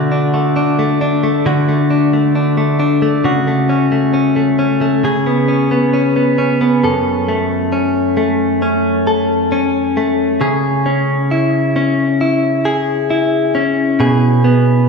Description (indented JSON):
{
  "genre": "pop",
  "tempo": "67 BPM",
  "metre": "4/4",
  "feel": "straight",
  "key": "F# minor",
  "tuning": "A4 = 438 Hz",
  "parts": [
    { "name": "direct-recorded clean electric guitar", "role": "solo", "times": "0.0-14.9 s", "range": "F#2 to A4", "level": "-12 LUFS", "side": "left 1 dB", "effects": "analog delay" }
  ],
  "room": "wet plate reverb, RT60 3.4 s",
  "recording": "dreamy mix soaked in reverb, small room reverb",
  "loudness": "-12 LUFS",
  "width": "side -4 dB against mid",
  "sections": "0.0-6.8 A section; 6.8-14.9 B section",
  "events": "none",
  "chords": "0.0 D; 3.3 F#m/C#; 5.0 C#5; 6.8 F#m; 10.4 C#m; 14.0 G#m/B",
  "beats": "0.57 1.46 2.36 | 3.25 4.15 5.04 5.94 | 6.83 7.73 8.63 9.52 | 10.42 11.31 12.21 13.10 | 14.00"
}